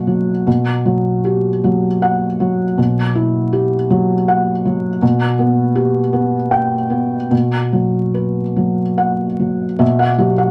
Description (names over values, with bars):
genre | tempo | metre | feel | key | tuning
neoclassical minimalist piano | 48-55 BPM (dotted quarters) | 6/8 | rubato | unclear | A4 = 437 Hz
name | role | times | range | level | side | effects
felt-muted upright piano | solo | 0.0-10.5 s | B2 to G5 | -16 LUFS | equal | none
room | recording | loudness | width
wet studio ambience, RT60 0.5 s | vinyl crackle | -16 LUFS | mono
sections
0.0-9.8 A section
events
none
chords
0.5 Emadd9/B; 5.0 G/B; 7.3 B5; 9.8 Emadd9/B